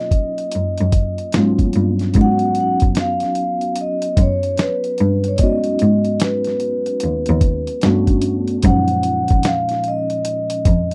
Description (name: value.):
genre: R&B, neo-soul.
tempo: 74 BPM.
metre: 4/4.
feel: swing 64% on 16ths.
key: G# dorian.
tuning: A4 = 440 Hz.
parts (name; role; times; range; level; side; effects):
vibraphone with soft mallets; melody; 0.0-10.9 s; B4 to F#5; -23 LUFS; equal; none.
tine electric piano; accompaniment; 0.0-10.9 s; A#2 to F#4; -24 LUFS; equal; ensemble chorus.
rich cello; bass; 0.0-10.9 s; D#2 to B2; -21 LUFS; equal; none.
dusty soul sampler-style drum kit; drums; 0.1-10.9 s; hi-hat, kick drum, snare drum; -20 LUFS; equal; none.
room: little or no reverb.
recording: dry, close 1970s-style studio recording.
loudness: -18 LUFS.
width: mono.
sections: 0.0-2.1 A section; 2.1-10.9 A section.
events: none.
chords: 0.0 Bmaj9; 1.3 G#m11; 2.1 G#m7; 7.8 Gmaj9; 8.6 F#maj9.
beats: 0.53 1.34 | 2.15 2.96 3.77 4.58 | 5.39 6.20 7.01 7.82 | 8.63 9.44 10.26.